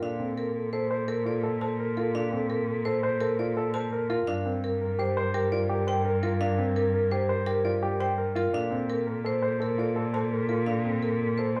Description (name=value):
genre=classical, minimalist pattern music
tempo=169 BPM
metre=6/4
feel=straight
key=unclear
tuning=A4 = 438 Hz
part: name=marimba with hard mallets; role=melody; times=0.0-11.6 s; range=Bb4 to A5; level=-33 LUFS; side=equal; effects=none
part: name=mellow French horn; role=second line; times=0.0-11.6 s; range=A4 to Bb4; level=-37 LUFS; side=equal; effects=none
part: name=dark concert grand piano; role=arpeggios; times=0.0-11.6 s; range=C4 to C5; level=-34 LUFS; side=equal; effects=none
part: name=warm cello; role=bass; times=0.0-11.6 s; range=G2 to Bb2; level=-33 LUFS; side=equal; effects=none
room=moderate large studio reverb, RT60 1.1 s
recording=heard from further back in the room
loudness=-28 LUFS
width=mono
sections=0.0-11.6 A section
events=none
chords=0.0 Bbmaj7(no3); 4.3 Gm7; 8.5 Bbmaj7